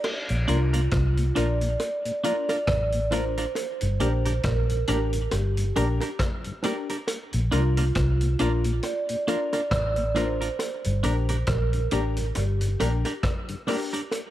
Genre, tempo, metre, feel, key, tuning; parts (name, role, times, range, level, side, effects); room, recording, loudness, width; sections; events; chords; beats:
roots reggae; 68 BPM; 4/4; swing 58% on 16ths; Bb major; A4 = 438 Hz
vintage drum kit; drums; 0.0-14.3 s; crash cymbal, hi-hat, kick drum, rim click; -31 LUFS; equal; dub echo
bongos; percussion; 0.0-14.3 s; -33 LUFS; right 1 dB
mellow tonewheel organ; accompaniment; 0.3-13.8 s; G2 to D4; -35 LUFS; left 3 dB; slow rotary speaker, dub echo
vintage muted fingered electric bass; bass; 0.3-13.0 s; G1 to C2; -24 LUFS; equal
vibraphone with soft mallets; melody; 0.5-13.2 s; F4 to D5; -30 LUFS; right 3 dB; tape echo
clean electric guitar; accompaniment; 0.5-14.0 s; D4 to Bb4; -32 LUFS; right 3 dB; tape echo
warm upright piano; stabs; 0.5-14.0 s; D4 to Bb4; -32 LUFS; left 7 dB
moderate spring reverb, RT60 2.4 s; -23 LUFS; side -13 dB against mid
0.0-14.3 A section
0.0 Bb; 3.6 Gm; 7.1 Bb; 10.6 Gm
| 0.04 0.92 1.80 2.68 | 3.56 4.44 5.32 6.20 | 7.08 7.96 8.84 9.72 | 10.60 11.48 12.36 13.24 | 14.12